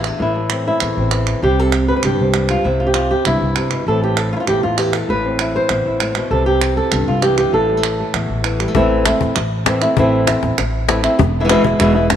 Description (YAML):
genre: flamenco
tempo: 197 BPM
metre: 4/4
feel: straight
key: A minor, A harmonic minor from 8.8 s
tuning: A4 = 440 Hz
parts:
  - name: flamenco guitar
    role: melody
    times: 0.0-12.1 s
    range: E2 to C5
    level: -16 LUFS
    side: equal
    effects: none
  - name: upright bass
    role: bass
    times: 0.0-12.2 s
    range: E1 to C2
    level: -20 LUFS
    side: equal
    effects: none
  - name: palmas hand claps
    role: percussion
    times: 0.0-12.2 s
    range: none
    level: -23 LUFS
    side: right 9 dB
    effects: none
  - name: cajon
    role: percussion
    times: 8.7-12.2 s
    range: none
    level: -20 LUFS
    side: left 7 dB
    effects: none
room: moderate echo chamber reverb, RT60 2.3 s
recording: 1960s-style stereo with parts hard left and right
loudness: -14 LUFS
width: side -9 dB against mid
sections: 0.0-8.8 A section; 8.8-12.2 B section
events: none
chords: 0.0 Am; 1.4 C; 3.9 Am; 6.3 C; 7.5 A5; 11.2 E